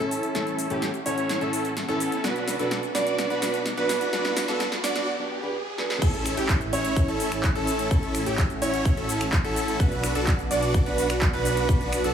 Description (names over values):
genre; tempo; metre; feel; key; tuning
EDM, festival progressive house; 127 BPM; 4/4; straight; unclear; A4 = 435 Hz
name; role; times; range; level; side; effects
fingerpicked plugged-in steel-string acoustic guitar; accompaniment; 0.0-6.0 s; A2 to B4; -32 LUFS; left 1 dB; sidechain pumping, dub echo
lush unison pad; sustained chords; 0.0-12.1 s; A3 to D6; -34 LUFS; equal; chorus, phaser, sidechain pumping
bright concert grand piano; arpeggios; 0.0-12.1 s; G4 to D5; -30 LUFS; right 1 dB; sidechain pumping, low-pass filter, dub echo
supersaw chords; riff; 0.0-12.1 s; C#4 to D5; -28 LUFS; right 1 dB; sidechain pumping, low-pass filter, dub echo
detuned saw bass; bass; 0.0-12.1 s; A1 to B1; -34 LUFS; equal; sidechain pumping, high-pass filter
big-room dance drum kit; drums; 0.0-12.1 s; crash cymbal, finger snaps, handclaps, hi-hat, shaker, snare drum; -31 LUFS; equal; none
riser; sound effects; 0.2-6.0 s; none; -36 LUFS; right 2 dB; none
electronic kick drum; drums; 6.0-11.8 s; none; -24 LUFS; equal; none
room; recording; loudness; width
light reverb; high-pass filter, small room ambience; -22 LUFS; side -8 dB against mid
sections
0.0-6.0 A section; 6.0-12.1 B section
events
build-up 0.0-6.0; drum fill 0.0-5.1, 5.8; filter sweep on supersaw synth 0.0-6.0; riser 0.2-6.0; break 5.1-6.0; drop 6.0-12.1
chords
0.0 A; 2.2 Bm; 6.0 A; 9.8 Bm